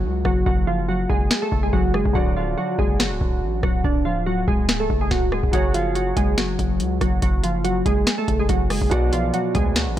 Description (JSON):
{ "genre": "hip hop, trap", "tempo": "142 BPM", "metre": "4/4", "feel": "half-time", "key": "F# harmonic minor", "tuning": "A4 = 436 Hz", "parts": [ { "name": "glassy digital keys", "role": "melody", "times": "0.0-10.0 s", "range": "D3 to A4", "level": "-22 LUFS", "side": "equal", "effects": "chorus, low-pass filter, tape echo" }, { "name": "dark grand piano", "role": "accompaniment", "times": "0.0-10.0 s", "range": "B2 to D5", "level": "-30 LUFS", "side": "right 2 dB", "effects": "low-pass filter" }, { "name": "hard-hitting 808-style bass", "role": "bass", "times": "0.0-10.0 s", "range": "C#1 to D2", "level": "-25 LUFS", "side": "equal", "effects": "none" }, { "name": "booming analog drum machine", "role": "drums", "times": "0.2-10.0 s", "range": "finger snaps, hi-hat, kick drum, rim click, snare drum", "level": "-21 LUFS", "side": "equal", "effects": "none" } ], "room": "little or no reverb", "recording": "none", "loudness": "-18 LUFS", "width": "side -12 dB against mid", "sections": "0.0-10.0 A section", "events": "break 0.0-5.5", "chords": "0.0 F#sus2; 2.2 D; 5.5 F#sus2; 8.9 Bm", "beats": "0.04 | 0.46 0.89 1.31 1.73 | 2.15 2.58 3.00 3.42 | 3.84 4.26 4.69 5.11 | 5.53 5.96 6.38 6.80 | 7.22 7.64 8.07 8.49 | 8.91 9.34 9.76" }